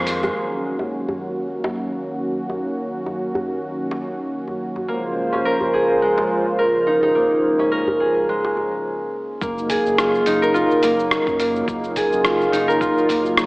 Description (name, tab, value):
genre	organic downtempo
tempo	106 BPM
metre	4/4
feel	swing 56% on 16ths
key	unclear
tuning	A4 = 441 Hz
part	warm analog pad	sustained chords	0.0-13.5 s	Db3 to C5	-25 LUFS	equal	chorus, sidechain pumping
part	concert harp	arpeggios	0.0-13.5 s	Ab3 to Bb4	-19 LUFS	equal	analog delay
part	smooth synth bass	bass	0.0-0.3, 9.4-13.5 s	Gb1 to Gb2	-33 LUFS	equal	none
part	dusty soul sampler-style drum kit	drums	0.1-0.3, 9.4-13.5 s	cabasa, hi-hat, rim click	-24 LUFS	equal	none
part	djembe	percussion	0.2-8.7 s	none	-30 LUFS	equal	none
part	electronic kick drum	drums	9.4-13.2 s	none	-30 LUFS	equal	none
room	wet lush hall reverb, RT60 2.1 s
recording	dreamy mix soaked in reverb, AM radio sound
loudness	-18 LUFS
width	side -25 dB against mid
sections	0.4-9.4 A section; 9.4-13.5 B section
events	stop 8.8-9.4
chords	0.4 Gb6; 4.9 Dbmaj7; 9.4 Gb6